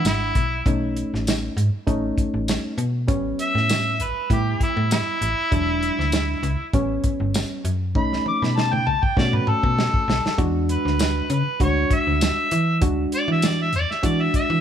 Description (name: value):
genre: straight-eighth soul blues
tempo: 99 BPM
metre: 4/4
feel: swing 54% on 16ths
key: E mixolydian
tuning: A4 = 440 Hz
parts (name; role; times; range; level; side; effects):
- mellow harmonica; melody; 0.0-14.6 s; E4 to D6; -24 LUFS; equal; overdrive
- reed electric piano; accompaniment; 0.0-14.6 s; F#3 to F#5; -26 LUFS; right 2 dB; none
- slap-like FM bass; bass; 0.0-14.6 s; E1 to E3; -23 LUFS; equal; none
- warm soul drum kit; drums; 0.0-14.5 s; hi-hat, kick drum, snare drum, tambourine, toms; -23 LUFS; equal; none
room: little or no reverb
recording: none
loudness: -19 LUFS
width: side -9 dB against mid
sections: 0.0-10.4 A section; 10.4-14.6 B section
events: drum fill 8.0-10.4; harmonica solo 10.4-14.6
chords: 0.0 E9; 0.7 B9; 3.1 A9; 5.5 E9; 6.7 A9; 8.0 B9; 10.4 E9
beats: 0.05 | 0.66 1.26 1.87 2.48 | 3.09 3.69 4.30 4.91 | 5.52 6.13 6.74 7.34 | 7.95 8.56 9.17 9.78 | 10.38 10.99 11.60 12.21 | 12.82 13.42 14.03